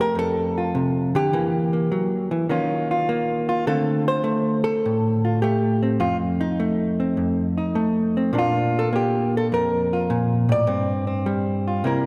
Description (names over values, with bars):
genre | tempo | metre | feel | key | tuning
solo jazz | 103 BPM | 4/4 | swing 68% on 8ths | F major | A4 = 445 Hz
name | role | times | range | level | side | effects
hollow-body jazz guitar | solo | 0.0-12.1 s | F2 to D5 | -22 LUFS | equal | none
room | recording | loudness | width
wet church reverb, RT60 2.6 s | recorded in a church or concert hall | -22 LUFS | mono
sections
0.0-12.1 A section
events
none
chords
0.0 F69; 1.3 Edim; 2.5 Ebsus2; 3.7 Dm7; 6.0 F7; 8.3 Bbmaj7; 10.7 G7sus4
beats
0.15 0.73 | 1.32 1.90 2.49 3.08 | 3.66 4.25 4.83 5.42 | 6.00 6.59 7.17 7.75 | 8.34 8.92 9.51 10.09 | 10.67 11.26 11.84